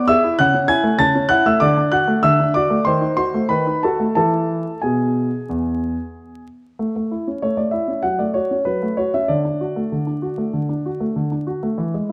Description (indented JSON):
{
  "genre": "classical-period piano sonatina",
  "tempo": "94 BPM",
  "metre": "4/4",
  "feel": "uneven beats, rubato",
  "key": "A major",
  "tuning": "A4 = 441 Hz",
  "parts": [
    { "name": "warm grand piano", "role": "solo", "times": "0.0-12.1 s", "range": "E2 to A6", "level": "-19 LUFS", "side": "equal", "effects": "none" }
  ],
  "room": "moderate recital hall reverb, RT60 1.7 s",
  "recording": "dark, warm production, vinyl crackle",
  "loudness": "-19 LUFS",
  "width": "mono",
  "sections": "0.0-6.8 A section; 6.8-12.1 B section",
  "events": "none",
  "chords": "0.4 A/C#; 1.6 Dadd9; 2.9 D#dim7; 4.2 E; 6.8 A; 8.1 F#m; 9.3 D",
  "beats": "0.40 1.01 | 1.63 2.24 2.86 3.50 | 4.16 4.83 5.49 6.14 | 6.79 7.42 8.05 8.68 | 9.30 9.93 10.55 11.17 | 11.79"
}